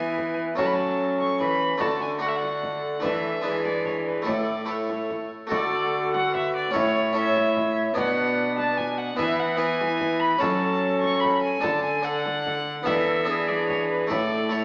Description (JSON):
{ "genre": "classical, renaissance-style consort dance", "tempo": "147 BPM", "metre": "3/4", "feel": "straight", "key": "A major", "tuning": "A4 = 441 Hz", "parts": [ { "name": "rich violin", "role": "melody", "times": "0.0-14.6 s", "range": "B4 to C#6", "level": "-28 LUFS", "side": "equal", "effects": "none" }, { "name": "mellow alto recorder", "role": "second line", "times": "0.0-14.6 s", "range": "G#4 to C#5", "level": "-31 LUFS", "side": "equal", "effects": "none" }, { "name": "clear trombone", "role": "accompaniment", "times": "0.0-14.6 s", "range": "C#4 to F#4", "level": "-28 LUFS", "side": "equal", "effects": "none" }, { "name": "harpsichord", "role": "accompaniment", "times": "0.0-14.6 s", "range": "A2 to D5", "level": "-27 LUFS", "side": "equal", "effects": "none" }, { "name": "dark cello", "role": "bass", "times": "0.0-14.6 s", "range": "A2 to F#3", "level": "-30 LUFS", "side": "equal", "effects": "none" }, { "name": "frame drum", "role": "percussion", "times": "0.2-14.3 s", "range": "none", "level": "-37 LUFS", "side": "equal", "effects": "none" } ], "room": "wet stone room reverb, RT60 1.3 s", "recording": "heard from further back in the room, AM radio sound", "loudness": "-22 LUFS", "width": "side -34 dB against mid", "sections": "0.0-5.5 A section; 5.5-14.6 A section", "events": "none", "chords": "0.0 E; 0.6 F#m; 1.8 D; 3.0 E7sus4; 3.4 E7; 4.3 A; 5.5 D; 6.7 A; 8.0 Bm; 9.2 E; 10.4 F#m; 11.6 D; 12.9 E7sus4; 13.3 E7; 14.1 A", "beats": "0.18 | 0.58 0.99 1.40 | 1.81 2.22 2.62 | 3.03 3.44 3.85 | 4.27 4.68 5.09 | 5.51 5.92 6.33 | 6.74 7.15 7.56 | 7.97 8.38 8.78 | 9.19 9.60 10.01 | 10.41 10.82 11.23 | 11.64 12.05 12.46 | 12.87 13.28 13.69 | 14.10 14.52" }